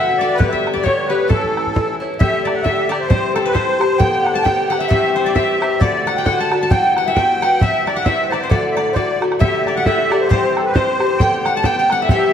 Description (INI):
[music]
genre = celtic folk, Celtic polka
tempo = 133 BPM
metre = 2/4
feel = swing 57% on 8ths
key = D mixolydian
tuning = A4 = 438 Hz
[part]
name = musette accordion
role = melody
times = 0.0-12.3 s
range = A4 to A5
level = -18 LUFS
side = equal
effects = slapback echo
[part]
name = koto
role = second line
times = 0.0-12.3 s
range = A4 to A5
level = -24 LUFS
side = left 4 dB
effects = none
[part]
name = Irish bouzouki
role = accompaniment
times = 0.0-12.3 s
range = G2 to G4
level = -19 LUFS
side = left 2 dB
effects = none
[part]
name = bodhran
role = percussion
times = 0.4-12.2 s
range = none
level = -20 LUFS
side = equal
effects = none
[sound]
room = wet plate reverb, RT60 2.5 s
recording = heard from further back in the room, vinyl crackle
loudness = -14 LUFS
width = side -8 dB against mid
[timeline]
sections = 0.0-2.2 A section; 2.2-9.4 B section; 9.4-12.3 B section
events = none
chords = 0.4 G; 1.3 A; 2.2 Dsus4; 3.1 C; 4.0 Gadd9; 4.9 C; 5.8 D; 6.7 Emadd9; 7.6 C; 8.5 D; 9.4 Dsus4; 10.3 C; 11.2 Gadd9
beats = | 0.39 0.84 | 1.29 1.74 | 2.19 2.65 | 3.10 3.55 | 4.00 4.45 | 4.90 5.35 | 5.80 6.26 | 6.71 7.16 | 7.61 8.06 | 8.51 8.96 | 9.41 9.86 | 10.31 10.76 | 11.20 11.65 | 12.10